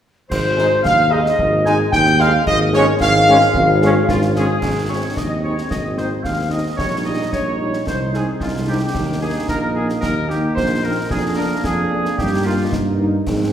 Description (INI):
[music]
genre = military-style march for wind band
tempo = 111 BPM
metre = 2/4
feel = straight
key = Ab major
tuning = A4 = 439 Hz
[part]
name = mellow trumpet section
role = melody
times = 0.3-12.7 s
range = F4 to Ab5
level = -22 LUFS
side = equal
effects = none
[part]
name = mellow hollow flute section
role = second line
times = 0.3-4.6 s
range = C5 to Ab5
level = -22 LUFS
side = left 1 dB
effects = none
[part]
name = warm woodwind section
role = second line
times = 0.3-12.7 s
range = F4 to Ab5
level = -23 LUFS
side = left 1 dB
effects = none
[part]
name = mellow tuba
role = bass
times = 0.3-13.5 s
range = Ab1 to Ab2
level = -20 LUFS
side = right 1 dB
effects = none
[part]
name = clash cymbals, concert bass drum and concert snare drum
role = drums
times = 0.3-13.5 s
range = none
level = -26 LUFS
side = left 1 dB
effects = none
[part]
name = mellow French horn section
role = accompaniment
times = 0.6-13.1 s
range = G3 to Ab4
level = -27 LUFS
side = left 2 dB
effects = none
[part]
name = warm trombone section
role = sustained chords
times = 0.6-13.5 s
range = G3 to Eb4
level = -25 LUFS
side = right 2 dB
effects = none
[sound]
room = wet scoring stage reverb, RT60 1.6 s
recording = recorded in a church or concert hall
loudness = -15 LUFS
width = side -9 dB against mid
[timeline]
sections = 0.3-4.6 A section; 4.6-13.5 B section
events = none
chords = 0.3 Ab; 2.5 Db/Ab; 4.6 Ab; 6.8 Eb7/Bb; 7.9 Ab/C; 8.9 Eb5; 11.1 Bb7/F; 12.2 Eb/G